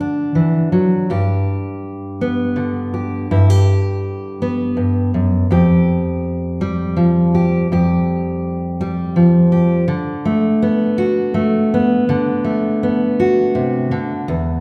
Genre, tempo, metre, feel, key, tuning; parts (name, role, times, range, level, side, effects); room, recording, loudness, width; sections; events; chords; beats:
folk; 82 BPM; 3/4; straight; A4 = 438 Hz
fingerpicked steel-string acoustic guitar; solo; 0.0-14.6 s; E2 to G4; -17 LUFS; equal
wet recital hall reverb, RT60 1.5 s; recorded in a church or concert hall; -17 LUFS; mono
0.0-9.9 A section; 9.9-14.6 B section
0.0 D; 1.1 G; 5.5 Fsus2; 9.9 D6
0.36 | 1.09 1.82 2.56 | 3.29 4.02 4.76 | 5.49 6.22 6.96 | 7.69 8.42 9.16 | 9.89 10.62 11.35 | 12.08 12.81 13.55 | 14.28